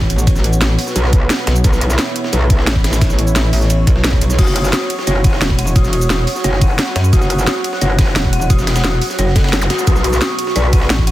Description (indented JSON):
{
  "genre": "dark technical drum and bass",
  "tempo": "175 BPM",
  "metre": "4/4",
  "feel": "straight",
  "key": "F# minor",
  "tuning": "A4 = 439 Hz",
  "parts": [
    { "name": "dark analog pad", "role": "sustained chords", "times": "0.0-11.1 s", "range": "B3 to C#6", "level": "-23 LUFS", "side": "right 2 dB", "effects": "chorus, sidechain pumping" },
    { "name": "metallic wobble bass", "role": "bass", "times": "0.0-11.1 s", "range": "E1 to F#2", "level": "-15 LUFS", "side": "equal", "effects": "chorus" },
    { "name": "electronic kick drum", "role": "drums", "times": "0.0-11.1 s", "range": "none", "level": "-14 LUFS", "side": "equal", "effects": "overdrive" },
    { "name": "breakbeat sampler-style drum kit", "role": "drums", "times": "0.1-11.1 s", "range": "ride cymbal, snare drum", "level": "-25 LUFS", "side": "equal", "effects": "high-pass filter on cymbals, high-pass filter on snare, high-pass filter on room" },
    { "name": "drum and bass drum kit", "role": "drums", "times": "0.1-11.1 s", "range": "cabasa, crash cymbal, hi-hat, ride cymbal, snare drum", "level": "-20 LUFS", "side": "equal", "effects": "overdrive" },
    { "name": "metallic wobble bass", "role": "bass", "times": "1.0-10.9 s", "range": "F#1 to B1", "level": "-16 LUFS", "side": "equal", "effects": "distortion, chorus, overdrive, sidechain pumping" },
    { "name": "dark detuned synth bell", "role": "arpeggios", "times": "4.4-11.1 s", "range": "F#4 to F#5", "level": "-23 LUFS", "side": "left 3 dB", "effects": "chorus, sidechain pumping, dub echo" },
    { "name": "zap", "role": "sound effects", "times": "9.6-9.7 s", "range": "none", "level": "-25 LUFS", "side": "equal", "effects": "none" }
  ],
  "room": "little or no reverb",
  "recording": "dense, heavily limited modern master",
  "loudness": "-12 LUFS",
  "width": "side -15 dB against mid",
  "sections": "0.0-11.1 A section",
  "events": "none",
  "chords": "0.0 B5; 4.4 F#5; 9.9 B5"
}